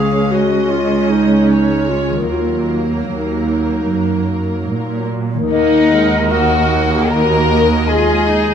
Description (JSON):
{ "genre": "cinematic, emotional film score for orchestra", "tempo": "76 BPM", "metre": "4/4", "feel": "rubato", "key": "Eb minor", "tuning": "A4 = 442 Hz", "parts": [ { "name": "muted symphonic violin section", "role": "second line", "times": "0.0-8.5 s", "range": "Eb4 to F5", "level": "-20 LUFS", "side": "left 4 dB", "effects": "none" }, { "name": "warm clarinet", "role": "second line", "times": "0.0-5.1 s", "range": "Eb4 to Ab4", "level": "-19 LUFS", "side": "left 2 dB", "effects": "none" }, { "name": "muted studio viola section", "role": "accompaniment", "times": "0.0-8.5 s", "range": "Gb3 to Bb4", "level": "-18 LUFS", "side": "right 2 dB", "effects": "none" }, { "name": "concert harp", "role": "arpeggios", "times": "0.0-8.5 s", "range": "Db3 to Bb4", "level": "-23 LUFS", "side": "left 7 dB", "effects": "none" }, { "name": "muted studio cello section", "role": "bass", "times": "0.0-8.5 s", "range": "Db2 to Bb2", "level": "-19 LUFS", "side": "right 4 dB", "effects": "none" }, { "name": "muted studio violin section", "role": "melody", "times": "5.5-8.5 s", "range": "Eb5 to Gb5", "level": "-24 LUFS", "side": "left 3 dB", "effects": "none" }, { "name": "silver concert flute", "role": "second line", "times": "5.5-8.5 s", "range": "Eb5 to Bb5", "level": "-21 LUFS", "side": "left 2 dB", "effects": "none" }, { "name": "muted studio double bass section", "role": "bass", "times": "5.5-8.5 s", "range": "Eb2", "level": "-20 LUFS", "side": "right 3 dB", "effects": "none" } ], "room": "light reverb", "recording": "close, detailed microphones", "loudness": "-13 LUFS", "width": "side -8 dB against mid", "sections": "0.0-5.5 A section; 5.5-8.5 A section", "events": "none", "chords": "0.0 Db5; 2.3 Ebm", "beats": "0.70 1.49 | 2.28 3.08 3.89 4.69 | 5.51 6.31 7.10 7.86" }